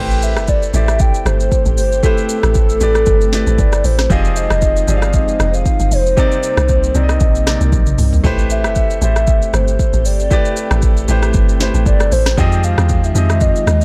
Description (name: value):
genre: amapiano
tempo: 116 BPM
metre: 4/4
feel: swing 55% on 16ths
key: A minor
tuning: A4 = 440 Hz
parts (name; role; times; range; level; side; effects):
- hollow clarinet-like synth lead; melody; 0.0-13.8 s; A4 to G5; -22 LUFS; equal; chorus, phaser, delay
- clear baby grand piano; accompaniment; 0.0-13.8 s; C3 to G5; -25 LUFS; equal; none
- ensemble organ-string; sustained chords; 0.0-13.8 s; C3 to G4; -28 LUFS; equal; ensemble chorus, sidechain pumping
- deep log drum bass; bass; 0.0-13.8 s; F1 to F2; -18 LUFS; equal; none
- afro-pop drum kit; drums; 0.1-13.8 s; hi-hat, kick drum, rim click, shaker, snare drum, toms; -19 LUFS; equal; none
room: little or no reverb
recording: dark, warm production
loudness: -14 LUFS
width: mono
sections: 0.0-13.8 A section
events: drum fill 7.7-8.2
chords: 0.0 Am7; 4.1 Fm7; 6.2 Cm7; 8.2 Am7; 12.4 Fm7